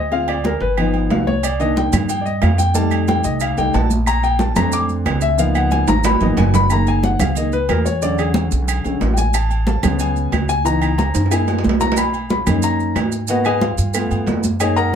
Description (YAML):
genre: Afro-Cuban jazz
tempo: 182 BPM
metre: 4/4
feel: straight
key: F# major from 6.7 s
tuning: A4 = 440 Hz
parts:
  - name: warm concert grand piano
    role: accompaniment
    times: 0.0-15.0 s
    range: D3 to D6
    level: -19 LUFS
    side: left 2 dB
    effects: none
  - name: upright bass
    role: bass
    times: 0.0-15.0 s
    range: Gb1 to G#2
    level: -20 LUFS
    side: right 1 dB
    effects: none
  - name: agogo bells and timbales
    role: percussion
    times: 0.1-14.9 s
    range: none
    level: -25 LUFS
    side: right 4 dB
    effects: none
  - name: congas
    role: percussion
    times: 0.1-14.9 s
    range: none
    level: -22 LUFS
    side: right 1 dB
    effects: none
  - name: claves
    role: percussion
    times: 0.3-14.8 s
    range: none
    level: -29 LUFS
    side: right 8 dB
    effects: none
  - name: maracas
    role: percussion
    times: 1.4-14.9 s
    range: none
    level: -30 LUFS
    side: right 8 dB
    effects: none
room: wet club reverb, RT60 0.5 s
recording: heard from further back in the room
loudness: -15 LUFS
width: side -8 dB against mid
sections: 0.0-6.7 A section; 6.7-15.0 A section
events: grand piano solo 0.0-15.0; drum fill 5.7-6.7, 11.2-12.0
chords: 0.1 Dm7b5; 0.8 Gaug7; 1.4 Cm7; 2.8 F9; 4.1 Bbmaj7; 5.4 Db13; 6.7 F#69; 8.0 E13; 9.3 Amaj7; 10.7 C#m9; 11.3 F#9; 12.0 Bmaj9; 13.3 G#m7; 14.0 G9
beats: | 0.12 0.45 0.77 1.10 | 1.43 1.76 2.09 2.42 | 2.75 3.08 3.41 3.74 | 4.07 4.40 4.73 5.06 | 5.39 5.72 6.05 6.38 | 6.71 7.04 7.37 7.70 | 8.03 8.36 8.69 9.01 | 9.34 9.67 10.00 10.33 | 10.66 10.99 11.32 11.65 | 11.98 12.31 12.64 12.96 | 13.29 13.62 13.95 14.28 | 14.61 14.94